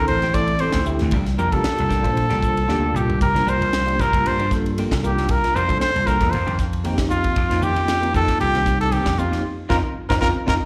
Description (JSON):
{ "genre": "electric jazz fusion", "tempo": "116 BPM", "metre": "4/4", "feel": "swing 53% on 16ths", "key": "unclear", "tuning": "A4 = 440 Hz", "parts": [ { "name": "clear trumpet", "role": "melody", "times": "0.0-10.5 s", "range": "F4 to D5", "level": "-24 LUFS", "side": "equal", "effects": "slapback echo, plate reverb" }, { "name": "bell-like tine electric piano", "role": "accompaniment", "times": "0.0-10.6 s", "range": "A3 to C5", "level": "-28 LUFS", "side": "equal", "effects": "ensemble chorus, plate reverb, slapback echo" }, { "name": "vintage slap bass", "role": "bass", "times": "0.0-10.6 s", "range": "A1 to G2", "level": "-25 LUFS", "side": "equal", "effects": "none" }, { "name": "clean electric guitar", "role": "stabs", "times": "0.1-10.6 s", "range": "Eb3 to G4", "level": "-33 LUFS", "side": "equal", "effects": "analog chorus, slapback echo, plate reverb" }, { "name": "crisp fusion drum kit", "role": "drums", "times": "0.1-10.6 s", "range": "hi-hat, kick drum, ride cymbal, snare drum, toms", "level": "-27 LUFS", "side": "equal", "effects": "none" } ], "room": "light reverb", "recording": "live gig heard through the venue's PA, club reverb", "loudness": "-20 LUFS", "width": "mono", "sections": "0.0-10.7 A section", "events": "drum fill 2.7-3.2; band accent 9.4-10.7; tine electric piano fill 10.5", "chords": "0.0 D9sus4; 1.1 C9sus4; 6.3 F9sus4" }